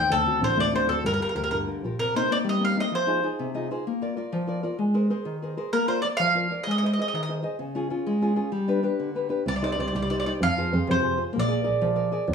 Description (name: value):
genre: italian folk, Italian serenade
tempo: 128 BPM (dotted quarters)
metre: 6/8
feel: straight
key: unclear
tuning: A4 = 440 Hz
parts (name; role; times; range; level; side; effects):
- mandolin; melody; 0.0-3.3, 5.7-7.3, 9.5-12.3 s; A4 to F5; -24 LUFS; right 1 dB; none
- nylon-string guitar; accompaniment; 0.0-12.3 s; C3 to Eb5; -26 LUFS; left 2 dB; none
- warm double bass; bass; 0.0-1.9, 9.5-12.3 s; G1 to F2; -28 LUFS; right 1 dB; none
room: moderate studio reverb, RT60 0.5 s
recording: studio reverb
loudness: -23 LUFS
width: side -6 dB against mid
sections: 0.0-2.0 A section; 2.0-12.3 B section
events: nylon-string guitar fill 3.4-3.9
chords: 0.1 D7; 1.0 Gm7; 2.0 Cm7; 2.9 Fm7; 3.9 Bb; 4.8 Abadd9; 5.7 Bb; 6.7 Ab; 7.6 Db; 8.5 G; 9.5 Cm; 10.4 Fm; 11.3 Bb7